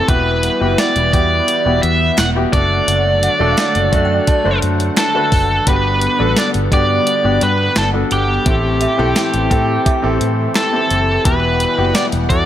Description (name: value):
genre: 1980s-style pop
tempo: 86 BPM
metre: 4/4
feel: straight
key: G major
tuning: A4 = 438 Hz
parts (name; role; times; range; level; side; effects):
- biting lead guitar; melody; 0.0-12.5 s; G4 to F#5; -17 LUFS; right 1 dB; overdrive, plate reverb
- clear baby grand piano; accompaniment; 0.0-12.5 s; G2 to C5; -20 LUFS; left 2 dB; plate reverb
- lush unison pad; sustained chords; 0.0-12.5 s; B2 to F#5; -23 LUFS; equal; chorus, phaser, plate reverb
- vintage muted fingered electric bass; bass; 0.1-12.5 s; E1 to A2; -19 LUFS; equal; none
- clean 12-bit digital drum machine; drums; 0.1-12.5 s; hi-hat, kick drum, snare drum, tambourine; -18 LUFS; equal; gated reverb
- group handclap; percussion; 0.8-12.1 s; none; -30 LUFS; right 5 dB; none
- synth chime; second line; 3.2-10.3 s; E5 to A5; -27 LUFS; right 3 dB; ensemble chorus, tremolo, ping-pong delay, plate reverb
room: moderate studio reverb, RT60 0.5 s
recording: none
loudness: -12 LUFS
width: side -11 dB against mid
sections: 0.0-12.5 A section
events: none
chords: 0.1 Emadd9; 2.5 D; 5.7 Gmaj7; 8.5 Am7; 11.3 Emadd9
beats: | 0.09 0.79 1.48 2.18 | 2.88 3.58 4.27 4.97 | 5.67 6.37 7.07 7.76 | 8.46 9.16 9.86 10.55 | 11.25 11.95